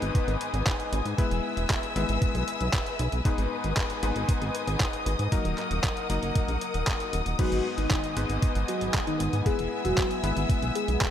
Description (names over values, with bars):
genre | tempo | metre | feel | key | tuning
italo disco | 116 BPM | 4/4 | straight | G# minor | A4 = 440 Hz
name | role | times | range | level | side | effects
dark symphonic string section | sustained chords | 0.0-11.1 s | B3 to E6 | -32 LUFS | left 2 dB | none
bright electric grand piano | stabs | 0.0-11.1 s | G#2 to B4 | -33 LUFS | left 5 dB | none
chorused synth bass | bass | 0.0-11.0 s | D#1 to G#2 | -29 LUFS | right 1 dB | none
detuned 8-bit digital drum machine | drums | 0.0-11.1 s | crash cymbal, handclaps, hi-hat | -33 LUFS | right 1 dB | overdrive
electronic kick drum | drums | 0.1-11.1 s | none | -27 LUFS | right 1 dB | overdrive
soft octave-layered synth lead | melody | 7.4-11.0 s | D#4 to G#4 | -30 LUFS | left 1 dB | chorus, phaser, ping-pong delay
room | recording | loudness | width
light reverb | none | -25 LUFS | side -10 dB against mid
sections
0.0-11.1 A section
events
none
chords
0.0 G#m; 1.2 E; 3.3 G#m; 5.3 D#m; 7.4 G#m; 9.5 E